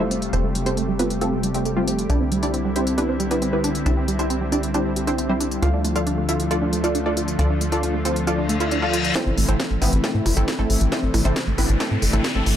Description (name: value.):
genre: uplifting trance.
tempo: 136 BPM.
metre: 4/4.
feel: straight.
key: A minor.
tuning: A4 = 440 Hz.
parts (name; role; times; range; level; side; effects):
wide unison pluck; melody; 0.0-12.6 s; F3 to F5; -25 LUFS; equal; lush chorus, sidechain pumping, tape echo.
lush unison pad; sustained chords; 0.0-12.6 s; C3 to G4; -25 LUFS; equal; chorus, sidechain pumping.
tight sequenced synth; arpeggios; 0.0-12.5 s; G3 to F4; -27 LUFS; right 2 dB; chorus, sidechain pumping, tape echo.
tight sequencer bass; bass; 0.0-12.5 s; F1 to A2; -24 LUFS; equal; sidechain pumping.
techno drum kit; drums; 0.1-12.6 s; hi-hat, percussion blips, snare drum; -28 LUFS; left 1 dB; high-pass filter on hats, high-pass filter on snare, high-pass filter on perc, high-pass filter on room.
reverse cymbal and riser; sound effects; 8.5-12.6 s; none; -30 LUFS; left 5 dB; none.
electronic kick drum; drums; 9.2-12.3 s; none; -32 LUFS; equal; high-pass filter on kick, high-pass filter on room.
room: light reverb, digital ambience.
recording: dark, warm production.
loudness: -19 LUFS.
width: side -10 dB against mid.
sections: 0.0-9.2 A section; 9.2-12.6 B section.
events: filter sweep on synth pluck 0.0-9.2; filter sweep on synth arpeggio sound 0.0-9.2; filter sweep on analog synth pad 0.0-9.2; reverse cymbal 8.5-9.2; build-up 9.2-12.6; drum fill 9.2-12.6; riser 9.2-12.6.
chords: 0.0 Fadd9; 2.1 Cadd9; 5.6 Dm; 9.2 Am.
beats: | 0.33 0.77 1.21 1.66 | 2.10 2.54 2.98 3.42 | 3.86 4.30 4.74 5.18 | 5.63 6.07 6.51 6.95 | 7.39 7.83 8.27 8.71 | 9.15 9.60 10.04 10.48 | 10.92 11.36 11.80 12.24.